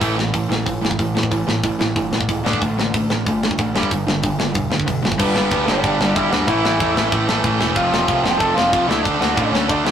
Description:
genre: punk rock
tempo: 186 BPM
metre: 4/4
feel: straight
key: unclear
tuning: A4 = 441 Hz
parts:
  - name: distorted electric guitar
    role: riff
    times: 0.0-9.9 s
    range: F2 to D4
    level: -21 LUFS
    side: right 4 dB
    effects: overdrive
  - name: overdriven electric guitar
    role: riff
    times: 0.0-9.9 s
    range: F2 to D4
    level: -25 LUFS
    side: left 5 dB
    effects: none
  - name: growling picked electric bass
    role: bass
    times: 0.0-9.9 s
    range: E1 to A2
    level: -25 LUFS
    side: equal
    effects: overdrive
  - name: tight metal drum kit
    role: drums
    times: 0.0-9.9 s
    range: crash cymbal, hi-hat, kick drum, snare drum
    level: -22 LUFS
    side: left 1 dB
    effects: none
  - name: lead guitar through a small cranked amp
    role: melody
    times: 5.2-9.9 s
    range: B3 to A5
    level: -21 LUFS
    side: left 1 dB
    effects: overdrive
room: moderate stone room reverb, RT60 1.2 s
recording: rough rehearsal-room recording, tube saturation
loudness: -16 LUFS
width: side -9 dB against mid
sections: 0.0-5.2 A section; 5.2-9.9 B section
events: none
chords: 0.0 A5; 2.4 D5/A; 3.7 G5; 5.2 G; 6.5 A5; 7.8 F; 8.9 D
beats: | 0.01 0.34 0.66 0.99 | 1.31 1.64 1.96 2.29 | 2.61 2.93 3.26 3.58 | 3.91 4.23 4.55 4.88 | 5.20 5.52 5.84 6.16 | 6.48 6.80 7.12 7.44 | 7.76 8.08 8.40 8.72 | 9.04 9.36 9.68

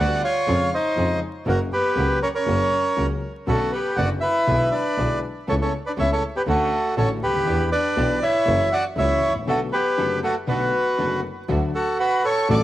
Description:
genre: tango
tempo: 120 BPM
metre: 4/4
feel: rubato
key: B minor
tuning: A4 = 443 Hz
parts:
  - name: bandoneon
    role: melody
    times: 0.0-12.6 s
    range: F#4 to F#5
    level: -21 LUFS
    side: right 1 dB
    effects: cassette tape, plate reverb, tape echo
  - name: warm violin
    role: second line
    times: 0.0-12.6 s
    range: A3 to D6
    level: -30 LUFS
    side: left 6 dB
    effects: plate reverb
  - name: dark baby grand piano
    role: accompaniment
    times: 0.0-12.6 s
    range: F#1 to G4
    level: -28 LUFS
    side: left 3 dB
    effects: plate reverb
  - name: clear symphonic string section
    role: stabs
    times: 0.0-12.6 s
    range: A3 to B4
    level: -35 LUFS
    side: right 6 dB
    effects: none
  - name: clear double bass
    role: bass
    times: 0.0-12.6 s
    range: F#1 to E#2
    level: -25 LUFS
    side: equal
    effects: none
room: moderate studio ambience, RT60 0.5 s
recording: home recording on cassette, vinyl crackle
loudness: -19 LUFS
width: side -14 dB against mid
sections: 0.0-11.5 A section; 11.5-12.6 B section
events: break 9.5-11.5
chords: 0.5 C#/E#; 1.5 F#; 3.5 Bmadd9; 4.5 E7/B; 5.5 Aadd9/C#; 6.5 Dmaj7; 7.5 Em7; 8.5 F#7; 9.5 Bm7; 11.5 D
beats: 0.47 0.97 | 1.47 1.97 2.47 2.97 | 3.48 3.98 4.48 4.98 | 5.48 5.98 6.48 6.97 | 7.47 7.97 8.47 8.97 | 9.47 9.97 10.48 10.98 | 11.49 11.99 12.49

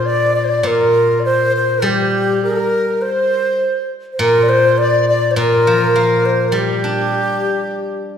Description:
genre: chinese traditional, Chinese chamber ensemble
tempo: 102 BPM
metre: 4/4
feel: rubato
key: G yu mode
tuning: A4 = 441 Hz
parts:
  - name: breathy bright low xiao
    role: melody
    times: 0.0-8.2 s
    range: G4 to D5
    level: -17 LUFS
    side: right 1 dB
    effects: none
  - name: mellow large dizi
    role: second line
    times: 0.0-8.2 s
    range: G4 to D5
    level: -18 LUFS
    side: left 2 dB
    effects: none
  - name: steel-string zither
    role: accompaniment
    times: 0.0-8.2 s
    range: Bb2 to D4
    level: -18 LUFS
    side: left 2 dB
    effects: none
room: wet recital hall reverb, RT60 1.6 s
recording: recorded in a church or concert hall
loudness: -13 LUFS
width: side -8 dB against mid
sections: 0.0-8.2 A section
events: none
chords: none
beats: 0.05 0.65 1.25 | 1.84 2.43 3.03 3.61 | 4.20 4.79 5.38 5.97 | 6.55 7.14 7.75

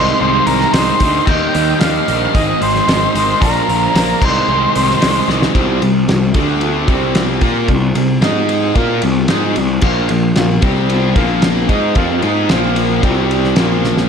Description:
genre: classic rock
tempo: 112 BPM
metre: 4/4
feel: straight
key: C minor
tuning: A4 = 440 Hz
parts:
  - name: octave-fuzz lead guitar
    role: melody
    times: 0.0-5.3 s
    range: Bb4 to G5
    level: -16 LUFS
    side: equal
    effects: distortion, slapback echo, tape echo
  - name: warm concert grand piano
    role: accompaniment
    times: 0.0-5.4, 9.8-14.0 s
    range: Bb3 to G5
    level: -25 LUFS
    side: left 4 dB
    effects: slapback echo
  - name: distorted electric guitar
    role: riff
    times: 0.0-14.1 s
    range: Ab2 to Bb4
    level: -19 LUFS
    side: left 12 dB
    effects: distortion
  - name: overdriven semi-hollow guitar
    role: riff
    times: 0.0-14.1 s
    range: Ab2 to Bb4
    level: -19 LUFS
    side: right 11 dB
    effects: slapback echo
  - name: fuzz picked electric bass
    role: bass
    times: 0.0-14.1 s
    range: Ab1 to Bb2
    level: -18 LUFS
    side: equal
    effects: overdrive
  - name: cloth-damped thuddy drum kit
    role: drums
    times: 0.5-14.1 s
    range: crash cymbal, hi-hat, kick drum, ride cymbal, snare drum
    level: -17 LUFS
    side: equal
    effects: none
room: moderate lush hall reverb, RT60 1.7 s, small room ambience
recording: big arena sound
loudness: -11 LUFS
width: side -7 dB against mid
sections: 0.0-5.6 A section; 5.6-14.1 B section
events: drum fill 5.3, 13.8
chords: 0.0 Ab/C; 1.3 Eb; 2.3 Ab; 3.4 Bb; 4.2 Ab/C; 5.6 C5; 6.4 D5; 6.9 C5; 8.2 Ab5; 8.8 Cm; 9.8 Bb5; 10.6 C5; 11.2 Bb5; 13.0 C5; 13.6 Bb5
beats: 0.20 0.74 | 1.27 1.81 2.34 2.88 | 3.41 3.95 4.48 5.02 | 5.55 6.09 6.62 7.16 | 7.69 8.22 8.76 9.29 | 9.83 10.36 10.89 11.43 | 11.96 12.49 13.03 13.56

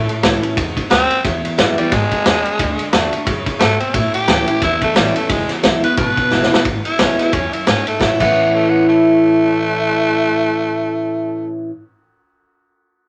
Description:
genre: rockabilly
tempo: 177 BPM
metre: 4/4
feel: swing 58% on 8ths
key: A major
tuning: A4 = 440 Hz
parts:
  - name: raspy tenor saxophone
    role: melody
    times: 0.0-11.5 s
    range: G3 to B4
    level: -21 LUFS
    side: equal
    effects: none
  - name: picked steel-string acoustic guitar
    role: accompaniment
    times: 0.0-11.7 s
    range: E2 to F#4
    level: -20 LUFS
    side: equal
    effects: none
  - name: upright bass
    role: bass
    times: 0.0-11.3 s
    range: E1 to A2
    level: -28 LUFS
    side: equal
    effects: none
  - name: vintage drum kit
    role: drums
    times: 0.1-8.3 s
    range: crash cymbal, kick drum, ride cymbal, snare drum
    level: -20 LUFS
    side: equal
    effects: none
room: moderate small room reverb, RT60 0.6 s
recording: none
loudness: -16 LUFS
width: mono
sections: 0.0-6.7 A section; 6.7-8.0 B section; 8.0-10.7 C section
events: drum fill 6.3-6.7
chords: 0.0 A; 1.2 E; 2.6 D; 3.9 A; 5.3 E; 8.0 A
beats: 0.24 0.57 0.91 | 1.25 1.59 1.92 2.26 | 2.60 2.94 3.27 3.61 | 3.95 4.29 4.62 4.96 | 5.30 5.64 5.98 6.32 | 6.65 6.99 7.33 7.67 | 8.01 8.35 8.69 9.03 | 9.37 9.71 10.04 10.38

